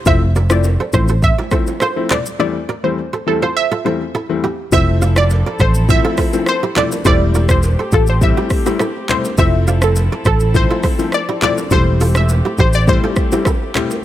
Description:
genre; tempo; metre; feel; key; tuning
afrobeats; 103 BPM; 4/4; straight; F major; A4 = 439 Hz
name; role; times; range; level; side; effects
analog pluck; melody; 0.1-13.3 s; A4 to E5; -20 LUFS; equal; chorus
clear grand piano; accompaniment; 0.1-13.9 s; E2 to E4; -20 LUFS; left 6 dB; none
kora; riff; 0.1-13.7 s; E4 to F5; -23 LUFS; right 4 dB; none
fingered electric bass; bass; 0.1-13.0 s; E1 to A1; -14 LUFS; equal; none
afro-pop drum kit; drums; 0.1-14.0 s; handclaps, hi-hat, kick drum, rim click, shaker; -18 LUFS; equal; none
congas and bongos; percussion; 0.1-14.0 s; none; -26 LUFS; right 3 dB; none
warm chamber string section; sustained chords; 4.7-14.0 s; F3 to A4; -28 LUFS; equal; none
room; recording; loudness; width
small room ambience; none; -13 LUFS; side -13 dB against mid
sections
0.0-4.7 A section; 4.7-14.0 B section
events
break 2.4-4.7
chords
0.1 Fmaj7; 2.4 Am7/E; 4.7 Fmaj7; 7.1 Am7/E; 9.4 Fmaj7; 11.7 Am7/E

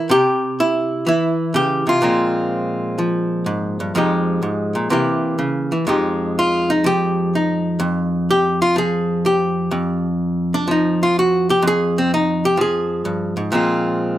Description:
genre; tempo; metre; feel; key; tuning
solo jazz; 125 BPM; 4/4; swing 69% on 8ths; F minor; A4 = 440 Hz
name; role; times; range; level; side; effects
archtop guitar, miked and amplified; solo; 0.0-14.2 s; F2 to Bb4; -16 LUFS; equal; none
room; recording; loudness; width
little or no reverb; close, detailed microphones; -16 LUFS; side -13 dB against mid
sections
0.0-5.9 A section; 5.9-14.2 B section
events
hollow-body jazz guitar solo 5.9-14.2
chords
0.0 C; 2.0 Bbsus2; 3.9 Fm9; 4.9 C7; 5.9 Fm9; 13.5 Bbsus2

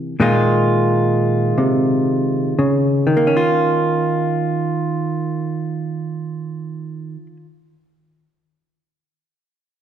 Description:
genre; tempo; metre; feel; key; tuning
solo jazz; 41 BPM; 4/4; swing 69% on 8ths, rubato; unclear; A4 = 442 Hz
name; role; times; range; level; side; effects
hollow-body jazz guitar; solo; 0.0-7.5 s; Bb2 to G4; -16 LUFS; right 1 dB; none
room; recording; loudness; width
wet concert hall reverb, RT60 1.8 s; recorded in a church or concert hall; -16 LUFS; side -9 dB against mid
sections
0.0-3.1 A section; 3.1-8.9 B section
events
slowing down 0.0-3.1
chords
0.2 Bb7sus4; 3.1 Ebsus2

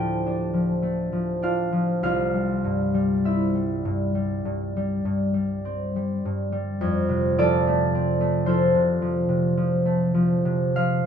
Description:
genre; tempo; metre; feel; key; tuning
classical, solo harp piece; 48-56 BPM; 4/4; rubato; F major; A4 = 440 Hz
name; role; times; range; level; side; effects
concert harp; solo; 0.0-11.1 s; C2 to A5; -21 LUFS; equal; none
room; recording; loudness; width
little or no reverb; close, detailed microphones; -21 LUFS; side -8 dB against mid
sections
0.0-6.8 A section; 6.8-11.1 B section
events
none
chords
0.0 Dm; 2.0 C; 6.8 F

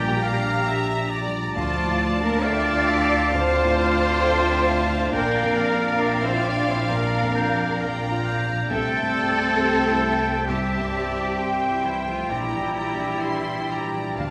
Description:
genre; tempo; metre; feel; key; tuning
cinematic; 67 BPM; 4/4; rubato; unclear; A4 = 439 Hz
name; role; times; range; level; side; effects
rich studio violin section; melody; 0.0-14.3 s; F5 to C6; -35 LUFS; equal; none
clear oboe; second line; 0.0-14.3 s; C5 to A5; -32 LUFS; equal; none
rich symphonic violin section; second line; 0.0-14.3 s; C5 to A5; -35 LUFS; equal; none
silver concert flute; second line; 0.0-14.3 s; F5 to G5; -33 LUFS; equal; none
warm clarinet; second line; 0.0-14.3 s; D5 to E5; -36 LUFS; equal; none
felt-muted upright piano; accompaniment; 0.0-14.3 s; Bb1 to Bb4; -33 LUFS; equal; none
warm symphonic viola section; accompaniment; 0.0-14.3 s; F3 to F4; -33 LUFS; equal; none
mellow French horn section; sustained chords; 0.0-14.3 s; D3 to D4; -33 LUFS; equal; none
rich symphonic cello section; bass; 0.0-14.3 s; D4 to D5; -28 LUFS; equal; none
rich symphonic double bass section; bass; 0.0-14.3 s; Bb1 to D2; -31 LUFS; equal; none
room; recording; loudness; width
wet recital hall reverb, RT60 1.4 s; recorded in a church or concert hall; -22 LUFS; mono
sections
0.0-14.3 A section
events
none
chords
0.0 Gm/Bb; 1.6 Dm; 5.1 Bb; 8.7 C; 12.3 Gm/Bb

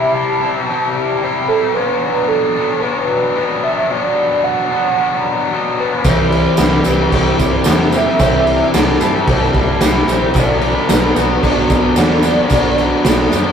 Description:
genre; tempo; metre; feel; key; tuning
rock, shoegaze and dream pop; 112 BPM; 4/4; straight; unclear; A4 = 439 Hz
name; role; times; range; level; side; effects
warm velvety synth lead; melody; 0.0-13.5 s; A4 to A5; -19 LUFS; right 2 dB; chorus
biting overdriven guitar; riff; 0.0-13.5 s; B2 to E4; -17 LUFS; left 3 dB; none
biting overdriven guitar; riff; 6.0-13.5 s; B2 to E4; -23 LUFS; right 2 dB; none
vintage muted fingered electric bass; bass; 6.0-13.5 s; Bb1 to G2; -21 LUFS; equal; none
raw garage drum kit; drums; 6.0-13.4 s; crash cymbal, kick drum, snare drum; -15 LUFS; equal; none
tambourine; percussion; 6.0-13.4 s; none; -29 LUFS; right 6 dB; none
picked twelve-string acoustic guitar; arpeggios; 6.1-13.5 s; E3 to G4; -21 LUFS; right 2 dB; none
room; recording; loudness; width
wet studio reverb, RT60 0.6 s; rough rehearsal-room recording, tube saturation; -12 LUFS; side -7 dB against mid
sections
0.0-13.5 A section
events
none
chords
0.0 C; 1.8 Bm; 6.1 C; 10.4 Bm

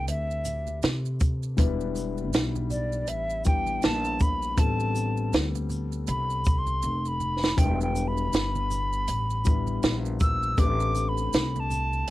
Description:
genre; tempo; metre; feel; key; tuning
hip hop, jazz-hop; 80 BPM; 4/4; swing 59% on 16ths; A minor; A4 = 440 Hz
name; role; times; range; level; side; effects
hollow concert flute; melody; 0.0-12.1 s; D5 to E6; -30 LUFS; equal; cassette tape
dark concert grand piano; accompaniment; 0.0-12.1 s; G3 to B4; -34 LUFS; left 8 dB; none
upright bass; bass; 0.0-12.0 s; E1 to C3; -29 LUFS; equal; none
compact cocktail drum kit; drums; 0.1-12.1 s; hi-hat, kick drum, shaker, snare drum; -24 LUFS; equal; cassette tape
maracas and congas; percussion; 0.1-12.1 s; none; -42 LUFS; right 6 dB; none
room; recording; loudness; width
light reverb; home recording on cassette; -24 LUFS; side -16 dB against mid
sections
0.0-12.1 A section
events
flute solo 0.0-12.1; drum fill 6.8-7.6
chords
0.0 Am11; 1.6 Em7; 4.6 Am11; 7.6 Em7; 10.6 Am11

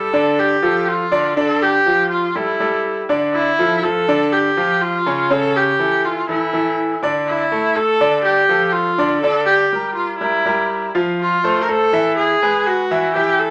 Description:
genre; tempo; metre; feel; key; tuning
latin; 122 BPM; 4/4; straight; D harmonic minor; A4 = 440 Hz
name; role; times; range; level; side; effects
rich viola; melody; 0.0-13.5 s; E4 to Bb4; -19 LUFS; equal; none
bright concert grand piano; arpeggios; 0.0-13.5 s; C#3 to F5; -21 LUFS; equal; none
room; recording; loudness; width
wet small room reverb, RT60 0.5 s; none; -17 LUFS; mono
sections
0.0-13.5 A section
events
none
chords
0.4 Dm; 1.4 G5; 2.3 A7sus4; 3.3 Dmadd9; 4.3 G5; 5.3 A; 7.3 Asus4; 8.2 Dm; 9.2 Gm; 10.2 Fsus24; 11.2 F; 12.2 E

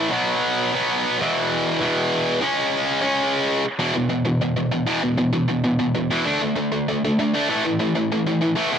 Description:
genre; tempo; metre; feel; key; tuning
punk; 195 BPM; 4/4; straight; unclear; A4 = 436 Hz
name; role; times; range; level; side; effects
tight distorted guitar; solo; 0.0-8.8 s; E2 to D4; -19 LUFS; equal; distortion, tape echo
room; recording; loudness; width
light reverb; none; -19 LUFS; side -8 dB against mid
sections
0.0-3.8 A section; 3.8-8.8 B section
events
half time 0.0-3.8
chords
0.1 B5; 1.2 E5; 2.4 C#5; 3.8 E5; 6.3 D5; 7.5 A5

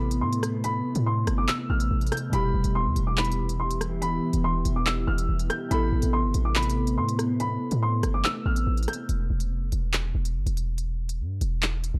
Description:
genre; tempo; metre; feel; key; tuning
hip hop, drill; 142 BPM; 4/4; half-time; unclear; A4 = 440 Hz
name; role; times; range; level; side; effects
dark upright piano; melody; 0.0-9.1 s; B5 to G6; -33 LUFS; equal; low-pass filter
glassy digital keys; accompaniment; 0.0-9.1 s; B2 to A4; -34 LUFS; equal; chorus
glassy FM pad; sustained chords; 0.0-9.1 s; C3 to G4; -35 LUFS; equal; ensemble chorus, built-in reverb
hard-hitting 808-style bass; bass; 0.0-12.0 s; E1 to A2; -28 LUFS; equal; none
drill drum kit; drums; 0.1-11.9 s; handclaps, hi-hat, rim click; -32 LUFS; equal; none
room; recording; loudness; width
digital ambience; dark, warm production; -26 LUFS; mono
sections
0.0-9.1 A section; 9.1-12.0 B section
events
break 9.1-12.0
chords
0.0 Amadd9; 2.3 Em; 5.7 Amadd9; 9.1 N.C.

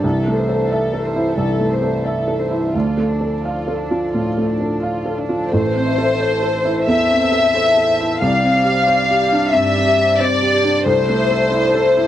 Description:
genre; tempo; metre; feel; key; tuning
neoclassical piano and strings; 90 BPM; 4/4; rubato; A minor; A4 = 440 Hz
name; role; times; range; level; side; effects
dark studio violin section; melody; 0.0-12.1 s; D4 to F5; -18 LUFS; left 2 dB; none
felt-muted upright piano; accompaniment; 0.0-12.1 s; A1 to F5; -18 LUFS; right 1 dB; none
pedal harmonium; sustained chords; 0.0-12.1 s; E3 to E5; -26 LUFS; right 3 dB; none
marimba with soft mallets; arpeggios; 5.5-12.0 s; C4 to A5; -24 LUFS; equal; analog delay
room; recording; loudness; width
light reverb; cassette tape; -14 LUFS; side -12 dB against mid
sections
0.0-5.5 A section; 5.5-12.1 B section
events
none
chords
0.0 Am/C; 2.7 Dm; 5.5 Am; 8.2 Csus2; 10.9 Am/C

